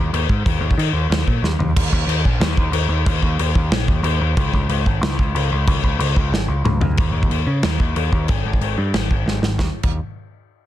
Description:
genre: heavy metal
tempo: 184 BPM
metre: 4/4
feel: straight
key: unclear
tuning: A4 = 441 Hz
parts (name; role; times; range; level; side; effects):
- growling picked electric bass; bass; 0.0-10.0 s; Ab1 to Eb3; -20 LUFS; equal; overdrive
- modern studio drum kit; drums; 0.1-9.9 s; china cymbal, crash cymbal, kick drum, snare drum, toms; -19 LUFS; equal; none
room: little or no reverb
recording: dense, heavily limited modern master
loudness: -16 LUFS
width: side -13 dB against mid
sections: 0.0-1.8 A section; 1.8-7.0 B section; 7.0-9.6 C section; 9.6-10.7 D section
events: drum fill 1.4-1.8, 6.3-7.0, 9.3-9.6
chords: none

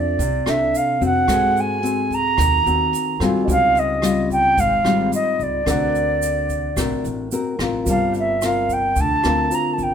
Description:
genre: bossa nova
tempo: 109 BPM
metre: 4/4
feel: straight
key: unclear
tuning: A4 = 440 Hz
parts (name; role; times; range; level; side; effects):
- concert flute; melody; 0.0-9.9 s; D5 to Bb5; -19 LUFS; right 2 dB; none
- nylon-string guitar; accompaniment; 0.0-9.9 s; Ab2 to Bb4; -22 LUFS; left 4 dB; none
- warm grand piano; accompaniment; 0.0-9.9 s; A3 to A5; -30 LUFS; right 3 dB; none
- upright bass; bass; 0.0-9.9 s; G1 to Ab2; -27 LUFS; equal; none
- jazz brush drum kit; drums; 0.2-9.9 s; hi-hat, kick drum, rim click; -28 LUFS; equal; none
- egg shaker; percussion; 0.2-9.9 s; none; -35 LUFS; right 7 dB; none
room: moderate stone room reverb, RT60 0.9 s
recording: band playing live in one room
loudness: -17 LUFS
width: side -8 dB against mid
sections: 0.0-9.9 A section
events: none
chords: 0.0 F6; 1.3 Ab7b9; 3.5 Dbmaj9#11; 5.7 D7b13; 7.9 Gm11

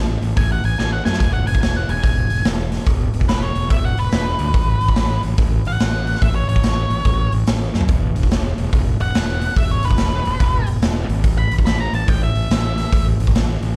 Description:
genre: blues rock power trio and southern rock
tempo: 143 BPM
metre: 4/4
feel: swing 64% on 8ths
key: E major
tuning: A4 = 441 Hz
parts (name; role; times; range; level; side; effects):
- fuzz fingered electric bass; bass; 0.0-13.7 s; E1 to F#2; -23 LUFS; equal; overdrive
- raw garage drum kit; drums; 0.2-13.7 s; hi-hat, kick drum, snare drum, toms; -21 LUFS; equal; none
- octave-fuzz lead guitar; melody; 0.4-13.0 s; B4 to B5; -27 LUFS; equal; distortion, slapback echo
room: little or no reverb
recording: live gig heard through the venue's PA, club reverb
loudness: -18 LUFS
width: mono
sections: 0.0-13.8 A section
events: lead electric guitar solo 0.0-13.8; drum fill 0.8-1.2, 7.7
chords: 0.0 A5; 1.2 E; 4.5 A; 7.9 E5; 11.3 A5

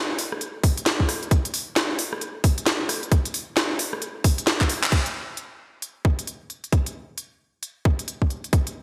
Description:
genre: UK garage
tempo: 133 BPM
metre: 4/4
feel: swing 62% on 16ths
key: none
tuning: none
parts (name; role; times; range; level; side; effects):
- garage drum kit; drums; 0.2-8.7 s; handclaps, hi-hat, rim click, snare drum; -27 LUFS; equal; gated reverb
- electronic kick drum; drums; 0.6-8.6 s; none; -23 LUFS; equal; none
room: moderate lush hall reverb, RT60 2.1 s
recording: bright 1980s-style digital production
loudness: -24 LUFS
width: mono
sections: 0.0-4.9 A section; 4.9-8.8 B section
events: drum fill 4.6-4.9; band accent 4.8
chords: none

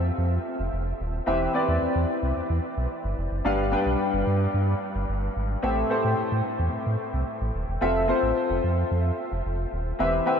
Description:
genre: 1980s-style pop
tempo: 110 BPM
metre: 4/4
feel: straight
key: unclear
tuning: A4 = 439 Hz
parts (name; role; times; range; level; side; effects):
- clear baby grand piano; accompaniment; 0.0-10.4 s; G2 to G5; -25 LUFS; left 1 dB; analog chorus
- sub bass with octave; bass; 0.0-10.2 s; D#1 to A2; -26 LUFS; equal; none
room: wet huge ambient reverb, RT60 7.9 s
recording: dreamy mix soaked in reverb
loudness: -23 LUFS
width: side -7 dB against mid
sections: 0.0-10.4 A section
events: none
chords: 0.0 Fmaj7; 1.3 Cmaj7/E; 3.5 G; 5.6 Am7; 7.8 Fmaj7

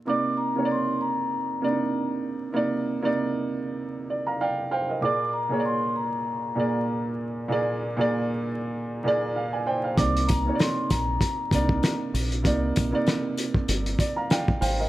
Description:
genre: hip hop, boom-bap hip-hop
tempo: 97 BPM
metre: 4/4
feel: swing 57% on 16ths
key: C minor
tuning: A4 = 445 Hz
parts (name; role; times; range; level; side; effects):
- dark upright piano; accompaniment; 0.0-14.9 s; Bb2 to Bb5; -26 LUFS; right 2 dB; high-pass filter, low-pass filter
- vibraphone with soft mallets; melody; 0.1-12.0 s; Bb5 to D6; -28 LUFS; left 2 dB; high-pass filter, low-pass filter
- deep dub fingered electric bass; bass; 10.0-14.9 s; G1 to C2; -27 LUFS; equal; none
- cloth-damped thuddy drum kit; drums; 10.0-14.8 s; hi-hat, kick drum, rim click, snare drum; -25 LUFS; equal; none
- sleigh bells; percussion; 10.0-14.8 s; none; -41 LUFS; left 6 dB; none
room: small room ambience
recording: vinyl crackle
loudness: -23 LUFS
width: side -15 dB against mid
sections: 0.1-14.9 A section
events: none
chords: 0.1 Cm9; 5.0 Bb7; 10.0 Cm9

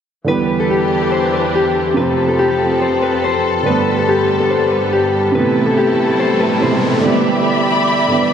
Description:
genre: hip hop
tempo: 142 BPM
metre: 4/4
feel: half-time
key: unclear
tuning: A4 = 440 Hz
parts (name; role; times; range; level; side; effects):
- dark concert grand piano; accompaniment; 0.2-8.3 s; B2 to C4; -18 LUFS; right 4 dB; none
- Celtic harp; melody; 0.3-8.3 s; G4 to C5; -16 LUFS; left 2 dB; diffuse ambient delay
- dark symphonic string section; sustained chords; 0.3-8.3 s; E2 to B5; -18 LUFS; equal; none
- riser; sound effects; 5.3-7.0 s; none; -24 LUFS; equal; none
room: wet cathedral reverb, RT60 5.0 s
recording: dreamy mix soaked in reverb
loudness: -13 LUFS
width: side -8 dB against mid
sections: 0.3-7.0 A section; 7.0-8.3 B section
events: riser 5.3-7.0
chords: 0.3 Em7; 2.0 F; 3.7 Gadd9; 5.3 Amadd9; 7.0 Em7

